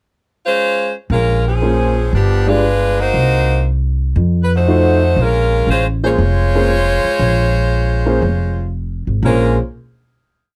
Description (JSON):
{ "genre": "jazz, big band swing", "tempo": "118 BPM", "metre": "4/4", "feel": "swing 69% on 8ths", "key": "Bb minor", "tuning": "A4 = 439 Hz", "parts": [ { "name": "edgy saxophone section", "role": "melody", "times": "0.5-9.6 s", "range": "F3 to Db5", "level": "-19 LUFS", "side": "equal", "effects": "none" }, { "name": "upright bass", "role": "bass", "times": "1.1-9.6 s", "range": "F1 to F2", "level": "-18 LUFS", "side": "equal", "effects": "none" }, { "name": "warm concert grand piano", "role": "accompaniment", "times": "1.6-9.6 s", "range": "Ab3 to D5", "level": "-19 LUFS", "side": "equal", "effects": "none" } ], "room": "light reverb", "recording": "close, detailed microphones", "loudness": "-15 LUFS", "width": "mono", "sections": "0.0-1.1 pickup bar; 1.1-9.2 A section; 9.2-10.6 final chord", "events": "none", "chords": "0.0 Abadd11; 1.1 Bbm9; 2.1 G7b9; 3.1 Cm7b5; 4.2 F7b9; 5.2 Bbm9", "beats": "0.10 0.61 | 1.12 1.62 2.13 2.64 | 3.15 3.66 4.17 4.68 | 5.18 5.69 6.20 6.71 | 7.22 7.73 8.23 8.74 | 9.25" }